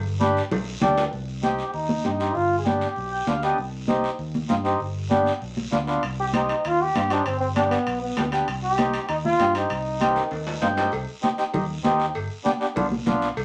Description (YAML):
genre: latin, cumbia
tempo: 196 BPM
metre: 4/4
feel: straight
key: C harmonic minor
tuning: A4 = 438 Hz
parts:
  - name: fingered electric bass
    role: bass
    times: 0.0-13.4 s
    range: G1 to G2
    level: -33 LUFS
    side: equal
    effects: none
  - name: mellow accordion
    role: accompaniment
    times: 0.2-13.3 s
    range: B3 to G5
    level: -26 LUFS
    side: equal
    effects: none
  - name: congas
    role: percussion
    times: 0.2-13.2 s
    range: none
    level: -29 LUFS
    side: equal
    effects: none
  - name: guiro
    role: percussion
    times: 0.2-13.4 s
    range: none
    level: -42 LUFS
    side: equal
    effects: none
  - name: cowbell and timbales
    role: percussion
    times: 0.5-1.0, 6.0-13.4 s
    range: none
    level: -36 LUFS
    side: equal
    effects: none
  - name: clear trombone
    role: second line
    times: 1.4-3.4, 6.2-10.7 s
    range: B3 to Ab4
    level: -27 LUFS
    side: equal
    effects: none
room: wet studio ambience, RT60 0.4 s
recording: none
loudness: -24 LUFS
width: mono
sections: 0.0-1.1 A section; 1.1-10.9 B section; 10.9-13.4 C section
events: drum fill 0.5-1.1, 10.2-10.9; trombone solo 1.1-10.9; accordion fill 3.0-3.6, 10.5-10.9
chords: 0.0 G; 1.1 Cm; 2.4 G7; 3.6 Cm; 4.8 G7; 6.0 Cm; 7.3 G; 8.5 Cm; 12.2 G7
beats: 0.21 0.52 0.82 | 1.13 1.44 1.74 2.05 | 2.35 2.66 2.97 3.27 | 3.58 3.88 4.19 4.50 | 4.80 5.11 5.42 5.72 | 6.03 6.33 6.64 6.95 | 7.25 7.56 7.87 8.17 | 8.48 8.79 9.09 9.40 | 9.70 10.01 10.31 10.62 | 10.93 11.23 11.54 11.84 | 12.15 12.46 12.76 13.07 | 13.37